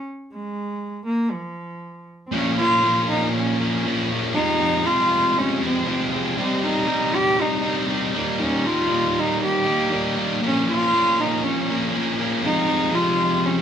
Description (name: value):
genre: rock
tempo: 119 BPM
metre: 4/4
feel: straight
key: unclear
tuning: A4 = 436 Hz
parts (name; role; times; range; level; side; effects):
- warm cello; melody; 0.0-13.6 s; F3 to G4; -22 LUFS; equal; none
- thick fuzz guitar; riff; 2.3-13.6 s; F2 to Eb4; -21 LUFS; equal; distortion
room: wet studio reverb, RT60 0.6 s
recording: band playing live in one room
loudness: -19 LUFS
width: side -8 dB against mid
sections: 0.0-2.3 A section; 2.3-13.6 B section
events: none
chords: 0.0 N.C.; 2.3 Bbm; 4.4 Fm; 6.4 Cm; 8.1 Eb; 10.4 Bbm; 12.4 Fm